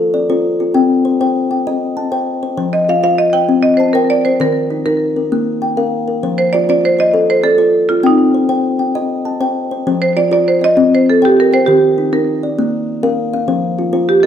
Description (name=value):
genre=southern african traditional, mbira-style interlocking cycle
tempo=132 BPM (dotted quarters)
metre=12/8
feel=straight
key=F mixolydian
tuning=A4 = 440 Hz
part: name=kalimba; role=arpeggios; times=0.0-14.3 s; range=Eb3 to A5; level=-14 LUFS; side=left 3 dB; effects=none
part: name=marimba with medium hard mallets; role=melody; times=2.7-14.3 s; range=Eb4 to G5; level=-12 LUFS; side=right 3 dB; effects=slapback echo
room=moderate recital hall reverb, RT60 1.3 s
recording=none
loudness=-12 LUFS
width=side -9 dB against mid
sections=0.0-9.9 A section; 9.9-14.3 B section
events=none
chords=0.0 F; 0.7 Cm; 2.6 F5; 3.5 C5; 4.4 Eb5; 5.3 Bb5; 6.2 F; 8.0 Cm; 9.9 F5; 10.8 Cm; 11.7 Eb; 12.6 Bb; 13.5 F5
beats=0.29 | 0.75 1.21 1.66 2.12 | 2.58 3.03 3.49 3.94 | 4.40 4.86 5.31 5.77 | 6.22 6.68 7.14 7.59 | 8.05 8.50 8.96 9.41 | 9.86 10.32 10.77 11.22 | 11.67 12.12 12.57 13.03 | 13.48 13.93